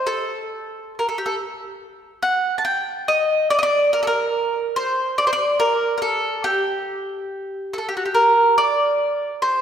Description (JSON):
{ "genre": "fado", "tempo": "70 BPM", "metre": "2/4", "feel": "rubato", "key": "G harmonic minor", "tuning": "A4 = 439 Hz", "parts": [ { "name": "mandolin", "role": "solo", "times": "0.0-9.6 s", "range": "F#4 to A5", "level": "-18 LUFS", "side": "equal", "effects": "none" } ], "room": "wet concert hall reverb, RT60 2.1 s", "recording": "recorded in a church or concert hall", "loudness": "-18 LUFS", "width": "side -8 dB against mid", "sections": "0.0-8.5 A section; 8.5-9.6 B section", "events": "none", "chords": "none" }